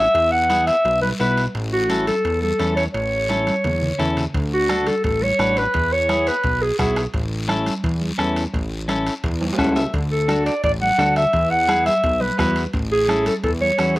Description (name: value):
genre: latin, cumbia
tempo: 172 BPM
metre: 4/4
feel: straight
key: A major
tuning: A4 = 440 Hz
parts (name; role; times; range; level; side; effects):
- warm clarinet; melody; 0.0-7.0, 10.1-14.0 s; F#4 to F#5; -18 LUFS; equal; none
- clean electric guitar; accompaniment; 0.0-14.0 s; B3 to F#5; -24 LUFS; left 2 dB; slapback echo
- fat analog bass; bass; 0.0-14.0 s; A1 to E2; -24 LUFS; equal; none
- timbales; percussion; 0.1-14.0 s; none; -34 LUFS; right 4 dB; slapback echo
- congas; percussion; 0.2-14.0 s; none; -28 LUFS; right 2 dB; none
- guiro; percussion; 0.2-14.0 s; none; -35 LUFS; left 4 dB; none
- bombo; percussion; 4.3-14.0 s; none; -26 LUFS; equal; none
room: little or no reverb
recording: recorded outdoors, with no room sound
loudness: -17 LUFS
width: side -18 dB against mid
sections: 0.0-14.0 A section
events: drum fill 3.3-4.3, 9.4-9.9; clean electric guitar fill 9.4-9.9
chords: 0.1 E; 1.5 A; 4.3 D; 5.7 E; 7.1 A; 9.9 D; 11.3 E; 12.7 A